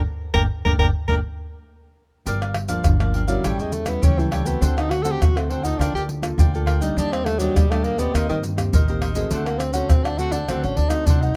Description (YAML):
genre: samba and choro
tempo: 102 BPM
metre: 4/4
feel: straight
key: G harmonic minor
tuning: A4 = 440 Hz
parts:
  - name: upright bass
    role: bass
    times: 0.0-11.3 s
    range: G1 to G2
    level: -27 LUFS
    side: equal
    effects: none
  - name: breathy soprano saxophone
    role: melody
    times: 0.3-1.2 s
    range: Bb4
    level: -25 LUFS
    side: equal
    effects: none
  - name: cavaquinho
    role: accompaniment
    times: 0.3-11.4 s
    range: D4 to G5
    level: -33 LUFS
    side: equal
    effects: none
  - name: nylon-string guitar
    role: accompaniment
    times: 0.3-11.4 s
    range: G2 to A4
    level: -31 LUFS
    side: equal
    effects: none
  - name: surdo, maracas, pandeiro and tamborim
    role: percussion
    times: 0.3-11.4 s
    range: none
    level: -24 LUFS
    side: equal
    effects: none
  - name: breathy tenor saxophone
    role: second line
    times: 3.3-11.4 s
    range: Eb3 to A4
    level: -28 LUFS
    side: equal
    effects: none
room: little or no reverb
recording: close, detailed microphones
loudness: -21 LUFS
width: mono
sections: 0.0-2.3 A section; 2.3-11.4 B section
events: band accent 0.0-2.3; tenor saxophone solo 2.3-11.4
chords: 0.0 Gmadd9; 2.3 Gm7; 3.4 A7; 4.6 D7; 5.8 Gm9/D; 7.0 Ebmaj7; 8.1 Cm7/Eb; 9.3 D7